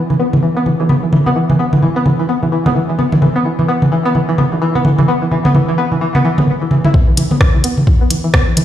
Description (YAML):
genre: minimal techno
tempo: 129 BPM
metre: 4/4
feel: swing 59% on 16ths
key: E minor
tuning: A4 = 440 Hz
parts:
  - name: rubbery square bass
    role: bass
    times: 0.0-6.9 s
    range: D1 to E2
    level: -31 LUFS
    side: left 1 dB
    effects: none
  - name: string-like resonator pluck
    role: riff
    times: 0.1-8.6 s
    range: E3 to E4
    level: -15 LUFS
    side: equal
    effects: chorus, sidechain pumping, digital delay
  - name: electronic toms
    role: percussion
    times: 0.1-8.6 s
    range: none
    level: -15 LUFS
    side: right 1 dB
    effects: none
  - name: electronic kick drum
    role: drums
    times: 6.9-8.4 s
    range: none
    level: -12 LUFS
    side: equal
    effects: none
  - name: minimal click drum kit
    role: drums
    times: 7.2-8.6 s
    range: hi-hat, rim click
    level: -19 LUFS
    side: equal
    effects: none
room: wet studio reverb, RT60 0.6 s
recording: played on a big sound system in a bare room, stone room reverb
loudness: -11 LUFS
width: side -11 dB against mid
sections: 0.0-6.9 A section; 6.9-8.6 B section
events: filter sweep on synth pluck 0.0-6.9, 6.9-8.6; build-up 6.9-8.6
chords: 0.0 E5